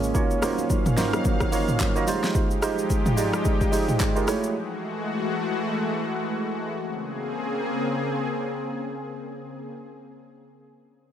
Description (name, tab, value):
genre	amapiano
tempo	109 BPM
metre	4/4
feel	swing 58% on 16ths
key	unclear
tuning	A4 = 445 Hz
part	tine electric piano	accompaniment	0.0-4.6 s	G3 to Eb5	-26 LUFS	right 4 dB	none
part	lush unison pad	sustained chords	0.0-9.7 s	Db3 to F5	-28 LUFS	left 2 dB	chorus
part	deep house drum kit	drums	0.0-4.5 s	handclaps, hi-hat, kick drum, rim click, shaker, snare drum, toms	-24 LUFS	equal	none
part	congas	percussion	0.4-2.2 s	none	-35 LUFS	left 5 dB	none
room	light reverb, digital ambience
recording	none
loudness	-23 LUFS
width	side -10 dB against mid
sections	0.0-6.8 A section; 6.8-9.0 B section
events	drop 0.0-6.8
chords	0.1 Ebm9; 2.1 Fm9; 4.3 Gbm9; 6.8 Bbm9